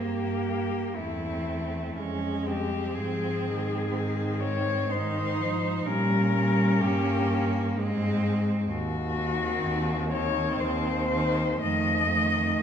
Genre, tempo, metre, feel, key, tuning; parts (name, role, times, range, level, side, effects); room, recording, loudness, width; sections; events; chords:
classical, lyrical piece for cello ensemble; 62 BPM; 3/4; rubato; A4 = 439 Hz
warm cello; melody; 0.0-12.6 s; E4 to Eb5; -29 LUFS; left 5 dB
rich cello; second line; 0.0-12.6 s; A3 to Eb4; -32 LUFS; right 4 dB
rich cello; accompaniment; 0.0-12.6 s; Eb3 to Bb3; -31 LUFS; left 2 dB
dark cello; bass; 0.0-12.5 s; Eb2 to Bb2; -30 LUFS; right 2 dB
wet recital hall reverb, RT60 1.6 s; heard from further back in the room; -25 LUFS; side -8 dB against mid
0.0-12.6 A section
0.0 Edim/G; 2.0 Fm; 3.0 Ab; 5.9 Gdim/Bb; 7.8 Ab; 8.7 Cdim/Eb; 11.6 F7